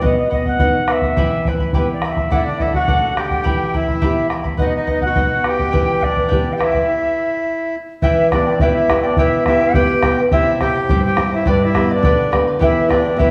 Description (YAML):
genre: andean folk, Andean ensemble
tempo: 105 BPM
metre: 2/4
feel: straight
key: E minor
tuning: A4 = 439 Hz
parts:
  - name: mellow quena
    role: melody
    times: 0.0-13.3 s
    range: B4 to G5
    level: -23 LUFS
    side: equal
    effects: none
  - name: charango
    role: accompaniment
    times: 0.0-13.3 s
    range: E4 to B5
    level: -23 LUFS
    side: equal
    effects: none
  - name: flamenco guitar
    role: accompaniment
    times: 0.0-13.3 s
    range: E2 to G4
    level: -24 LUFS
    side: equal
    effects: none
  - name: bombo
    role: percussion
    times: 0.0-13.3 s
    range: none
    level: -22 LUFS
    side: equal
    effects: none
  - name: accordion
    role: second line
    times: 2.3-13.3 s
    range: D4 to G4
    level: -25 LUFS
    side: equal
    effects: none
room: moderate concert hall reverb, RT60 1.8 s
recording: studio reverb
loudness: -17 LUFS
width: mono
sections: 0.0-8.0 A section; 8.0-13.3 B section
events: stop 6.9-8.0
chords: 0.0 B; 1.2 Em; 2.3 D; 3.5 Em; 4.6 B; 5.7 Em; 6.9 N.C.; 8.0 Em; 10.3 C; 11.5 G; 12.6 Em